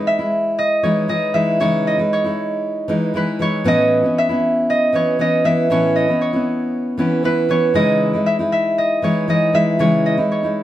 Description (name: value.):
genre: pop.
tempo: 117 BPM.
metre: 4/4.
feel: straight.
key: C# minor.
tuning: A4 = 442 Hz.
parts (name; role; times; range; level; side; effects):
concert harp; melody; 0.0-10.6 s; B4 to E5; -18 LUFS; equal; none.
fingerpicked steel-string acoustic guitar; accompaniment; 0.0-10.6 s; A2 to E4; -18 LUFS; equal; none.
room: light reverb.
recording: dark, warm production.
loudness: -15 LUFS.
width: side -12 dB against mid.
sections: 0.0-10.6 A section.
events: none.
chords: 0.0 C#madd9; 3.7 Aadd9; 7.7 C#madd9.